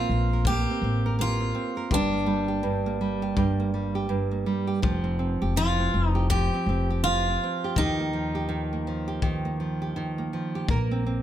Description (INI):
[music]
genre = acoustic pop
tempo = 82 BPM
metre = 4/4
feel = swing 60% on 16ths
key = Bb major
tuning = A4 = 440 Hz
[part]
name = picked steel-string acoustic guitar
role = melody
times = 0.0-10.3 s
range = D4 to G4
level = -28 LUFS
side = left 1 dB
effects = none
[part]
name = nylon-string guitar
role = accompaniment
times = 0.0-11.2 s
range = G2 to Bb4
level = -27 LUFS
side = right 3 dB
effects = none
[part]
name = upright bass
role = bass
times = 0.0-11.2 s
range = F1 to Eb2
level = -29 LUFS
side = left 1 dB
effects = none
[part]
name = kick drum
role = drums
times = 0.5-10.9 s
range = none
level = -28 LUFS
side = left 3 dB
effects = none
[sound]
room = little or no reverb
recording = close, detailed microphones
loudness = -24 LUFS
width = side -11 dB against mid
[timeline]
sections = 0.0-11.2 A section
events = none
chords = 0.0 Bbsus2; 1.9 Gm; 4.8 Fsus2; 7.8 Ebadd9; 10.7 Bbsus2